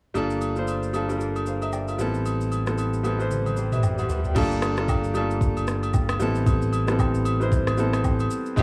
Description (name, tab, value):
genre	amapiano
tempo	114 BPM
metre	4/4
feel	swing 58% on 16ths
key	G dorian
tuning	A4 = 435 Hz
part	clear grand piano	accompaniment	0.1-8.6 s	G3 to G5	-28 LUFS	equal	none
part	swell	sound effects	3.6-4.4 s	none	-40 LUFS	equal	none
part	fingered electric bass	bass	0.2-8.6 s	F1 to A1	-29 LUFS	equal	none
part	smooth R&B drum kit	drums	0.2-8.6 s	crash cymbal, kick drum, rim click, shaker, toms	-28 LUFS	equal	none
part	agogo bells and woodblock	percussion	0.2-8.6 s	none	-36 LUFS	equal	none
room	digital ambience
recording	dry, gritty hardware recording, transformer saturation, small room ambience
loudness	-24 LUFS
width	mono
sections	0.1-4.4 A section; 4.4-8.6 B section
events	drum fill 3.3-4.4; swell 3.6-4.4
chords	0.1 Gm9; 2.0 Am9; 4.4 Gm9; 6.2 Am9